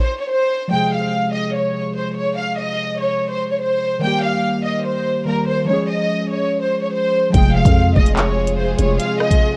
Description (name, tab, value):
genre	hip hop, drill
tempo	145 BPM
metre	4/4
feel	half-time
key	F minor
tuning	A4 = 441 Hz
part	warm studio violin section	melody	0.0-9.6 s	Bb4 to G5	-22 LUFS	equal	delay
part	warbly lo-fi synth keys	accompaniment	0.7-9.6 s	C3 to Bb4	-24 LUFS	equal	chorus
part	dark chamber string section	sustained chords	7.3-9.6 s	C3 to Ab4	-26 LUFS	equal	none
part	growling 808-style bass	bass	7.3-9.0 s	F1 to F2	-20 LUFS	equal	none
part	drill drum kit	drums	7.3-9.4 s	handclaps, hi-hat, kick drum, rim click	-18 LUFS	equal	none
room	light reverb, digital ambience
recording	worn, warbling old tape, cassette tape, warbly pitch drift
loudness	-18 LUFS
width	mono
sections	0.7-9.6 A section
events	stop 0.0-0.7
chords	0.0 N.C.; 0.7 Fm; 4.0 Eb; 5.7 Db; 7.3 Fm